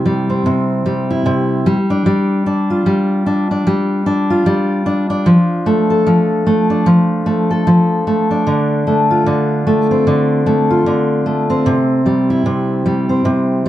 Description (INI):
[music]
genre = pop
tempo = 75 BPM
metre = 4/4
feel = swing 60% on 16ths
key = C major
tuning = A4 = 439 Hz
[part]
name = fingerpicked steel-string acoustic guitar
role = solo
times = 0.0-13.7 s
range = C3 to A4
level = -12 LUFS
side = equal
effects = none
[sound]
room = moderate studio reverb, RT60 0.5 s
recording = dark, warm production, faint mains hum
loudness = -12 LUFS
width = side -13 dB against mid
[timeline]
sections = 0.0-13.7 A section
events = none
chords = 0.0 C; 1.7 G5; 5.3 F6; 8.5 Dm7; 11.7 C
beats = 0.46 1.26 | 2.06 2.86 3.66 4.46 | 5.26 6.07 6.87 7.67 | 8.47 9.27 10.06 10.86 | 11.66 12.46 13.26